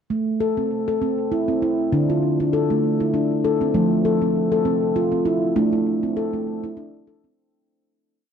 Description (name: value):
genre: world meditative, meditative tuned percussion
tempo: 99 BPM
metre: 3/4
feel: swing 55% on 16ths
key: A minor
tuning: A4 = 440 Hz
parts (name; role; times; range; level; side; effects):
- handpan; solo; 0.1-7.4 s; D3 to A4; -19 LUFS; equal; tape echo
room: wet echo chamber reverb, RT60 1.9 s, small room ambience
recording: dark, warm production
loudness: -18 LUFS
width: side -7 dB against mid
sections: 0.1-7.4 A section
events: fade-out 5.6-7.4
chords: 0.1 Am; 1.9 Dm; 3.7 F; 5.6 Am